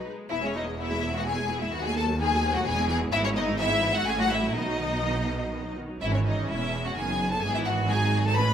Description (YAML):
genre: quick classical-period movement for string orchestra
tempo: 127 BPM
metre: 3/4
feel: straight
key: E major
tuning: A4 = 439 Hz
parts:
  - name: clear symphonic violin section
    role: second line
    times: 0.0-8.5 s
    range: C#4 to B4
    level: -31 LUFS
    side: left 3 dB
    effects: none
  - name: rich symphonic viola section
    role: accompaniment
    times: 0.0-8.5 s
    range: D#3 to G#4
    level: -33 LUFS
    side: right 2 dB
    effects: none
  - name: warm symphonic violin section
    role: melody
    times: 0.3-8.5 s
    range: C#5 to B5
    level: -29 LUFS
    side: left 2 dB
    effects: none
  - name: clear symphonic double bass section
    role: bass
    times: 0.3-8.5 s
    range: E1 to D#2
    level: -31 LUFS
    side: right 2 dB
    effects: none
  - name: rich symphonic cello section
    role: bass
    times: 0.3-8.5 s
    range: D#2 to B2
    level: -32 LUFS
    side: right 2 dB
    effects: none
room: moderate scoring stage reverb, RT60 1.7 s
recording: close, detailed microphones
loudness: -24 LUFS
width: side -9 dB against mid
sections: 0.3-8.5 A section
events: none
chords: 0.3 E; 1.7 B7/D#; 2.7 E; 3.1 E/G#; 4.1 F#m/A; 4.5 B; 6.0 E/G#; 7.0 B/F#; 7.4 E/G#